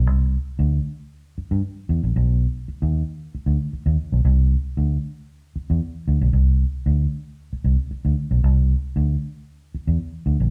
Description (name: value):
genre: funk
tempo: 115 BPM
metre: 4/4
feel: straight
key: unclear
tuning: A4 = 440 Hz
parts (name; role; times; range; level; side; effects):
- vintage muted fingered electric bass; solo; 0.0-10.5 s; A#1 to G2; -21 LUFS; equal; none
room: wet large studio reverb, RT60 1.0 s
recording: band playing live in one room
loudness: -22 LUFS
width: mono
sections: 0.0-10.5 A section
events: none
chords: none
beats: | 0.07 0.59 1.11 1.64 | 2.16 2.68 3.21 3.73 | 4.25 4.77 5.30 5.82 | 6.34 6.87 7.39 7.91 | 8.44 8.96 9.48 10.00